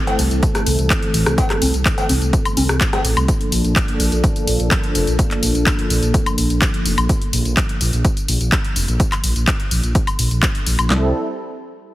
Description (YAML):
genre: progressive house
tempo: 126 BPM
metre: 4/4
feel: straight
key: unclear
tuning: A4 = 439 Hz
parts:
  - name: filtered supersaw swell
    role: sustained chords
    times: 0.0-11.1 s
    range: E3 to A4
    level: -23 LUFS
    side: equal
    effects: sidechain pumping, low-pass filter
  - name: house drum kit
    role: drums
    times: 0.1-10.9 s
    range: handclaps, hi-hat, tambourine, woodblock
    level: -22 LUFS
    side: left 1 dB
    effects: studio ambience
  - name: electronic cowbell, rim click and congas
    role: percussion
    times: 0.1-3.0 s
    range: none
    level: -21 LUFS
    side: left 1 dB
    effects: sidechain pumping on perc, studio ambience, sidechain pumping on snare
  - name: dark detuned saw bass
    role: bass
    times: 0.2-11.1 s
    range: F1 to C2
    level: -18 LUFS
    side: equal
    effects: sidechain pumping
  - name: house drum kit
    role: drums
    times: 0.4-11.0 s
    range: handclaps, kick drum, snare drum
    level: -19 LUFS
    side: equal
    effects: studio ambience
room: light reverb, digital ambience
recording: heavily compressed radio sound, multiband compression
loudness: -15 LUFS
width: side -16 dB against mid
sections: 0.0-10.9 A section; 10.9-11.9 B section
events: filter sweep on supersaw synth 0.0-10.9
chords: 0.0 C6; 3.3 Bbmaj7; 10.9 C6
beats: 0.43 0.90 | 1.38 1.85 2.33 2.81 | 3.28 3.76 4.24 4.71 | 5.19 5.67 6.14 6.62 | 7.09 7.57 8.05 8.52 | 9.00 9.47 9.95 10.43 | 10.90